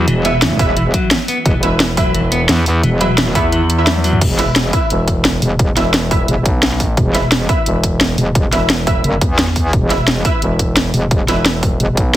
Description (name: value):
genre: dark technical drum and bass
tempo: 174 BPM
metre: 4/4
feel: straight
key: unclear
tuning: A4 = 440 Hz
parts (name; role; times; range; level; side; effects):
- clean electric guitar; arpeggios; 0.0-4.2 s; E3 to B3; -20 LUFS; left 2 dB; spring reverb, sidechain pumping, tape echo
- growling FM bass; bass; 0.0-12.2 s; E1 to E2; -17 LUFS; equal; none
- metallic wobble bass; bass; 0.1-12.0 s; E1 to E2; -16 LUFS; equal; distortion, chorus, tube saturation
- drum and bass drum kit; drums; 0.1-12.2 s; crash cymbal, hi-hat, snare drum, toms; -16 LUFS; equal; studio reverb
- orchestra-hit-like synth stab; stabs; 0.2-11.4 s; E4 to E5; -21 LUFS; right 2 dB; built-in reverb, tape echo
- electronic kick drum; drums; 0.6-12.0 s; none; -17 LUFS; equal; studio reverb
room: light reverb, digital ambience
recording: heavily compressed radio sound, multiband compression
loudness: -12 LUFS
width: side -13 dB against mid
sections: 0.0-4.2 A section; 4.2-12.2 A section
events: drop 0.0-4.2, 4.2-12.2; kick drops out 3.5-4.2; drum fill 3.9-4.2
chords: 0.0 E5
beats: | 0.08 0.42 0.77 1.11 | 1.46 1.80 2.15 2.49 | 2.83 3.18 3.52 3.87 | 4.21 4.56 4.90 5.25 | 5.59 5.94 6.28 6.63 | 6.97 7.32 7.66 8.01 | 8.35 8.70 9.04 9.39 | 9.73 10.08 10.42 10.77 | 11.11 11.46 11.80 12.14